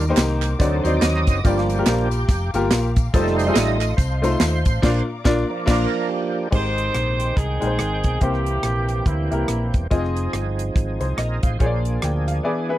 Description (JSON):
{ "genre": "uptempo gospel", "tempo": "142 BPM", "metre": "4/4", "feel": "swing 59% on 8ths", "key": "unclear", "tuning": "A4 = 441 Hz", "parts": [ { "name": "clear grand piano", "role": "accompaniment", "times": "0.0-12.8 s", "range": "G2 to G5", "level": "-24 LUFS", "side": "left 2 dB", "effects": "none" }, { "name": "muted symphonic string section", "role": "sustained chords", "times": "0.0-6.5 s", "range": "Bb4 to D6", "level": "-35 LUFS", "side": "left 4 dB", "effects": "none" }, { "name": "overdriven tonewheel organ", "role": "sustained chords", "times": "0.0-12.8 s", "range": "Eb3 to G5", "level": "-26 LUFS", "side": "right 4 dB", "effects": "slow rotary speaker, chorus vibrato" }, { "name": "fingered electric bass", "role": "bass", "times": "0.0-12.4 s", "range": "E1 to Eb2", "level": "-23 LUFS", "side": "equal", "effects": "none" }, { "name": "tight funk drum kit", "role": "drums", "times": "0.0-12.4 s", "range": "crash cymbal, hi-hat, kick drum, rim click, snare drum", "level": "-20 LUFS", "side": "equal", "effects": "none" }, { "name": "tambourine and handclaps", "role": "percussion", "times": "0.0-4.7 s", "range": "none", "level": "-33 LUFS", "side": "right 4 dB", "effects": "none" }, { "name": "mellow horn section", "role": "melody", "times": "6.5-9.9 s", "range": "G3 to C5", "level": "-25 LUFS", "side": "equal", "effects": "none" } ], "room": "little or no reverb", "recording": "dry, close 1970s-style studio recording", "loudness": "-18 LUFS", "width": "side -14 dB against mid", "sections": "0.0-6.5 A section; 6.5-12.8 B section", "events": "tonewheel organ solo 0.0-6.5; band accent 4.8-6.5", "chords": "0.0 Ebmaj7; 0.6 D7b9; 1.4 Gm7; 3.1 F7; 4.8 Bb; 6.5 Abmaj7; 8.2 C7; 9.9 Fm7; 11.6 Bb7", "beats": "0.18 0.60 1.02 | 1.45 1.87 2.29 2.72 | 3.14 3.56 3.99 4.41 | 4.83 5.25 5.68 6.10 | 6.52 6.95 7.37 7.79 | 8.22 8.64 9.07 9.49 | 9.91 10.34 10.76 11.19 | 11.61 12.03 12.46" }